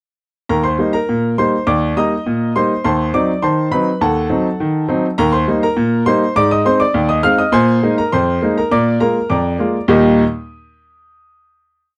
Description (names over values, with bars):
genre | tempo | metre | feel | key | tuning
ragtime piano | 102 BPM | 2/4 | straight | unclear | A4 = 440 Hz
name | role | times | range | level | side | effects
clear grand piano | solo | 0.5-10.2 s | Eb2 to F6 | -15 LUFS | equal | none
room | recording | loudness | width
little or no reverb | dry, close 1970s-style studio recording | -15 LUFS | mono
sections
0.5-9.9 A section; 9.9-11.1 final chord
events
none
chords
0.5 Eb; 2.8 Ebdim7; 5.2 Eb; 6.4 Ab; 7.5 Bb7sus4; 8.7 Bb7; 9.9 Eb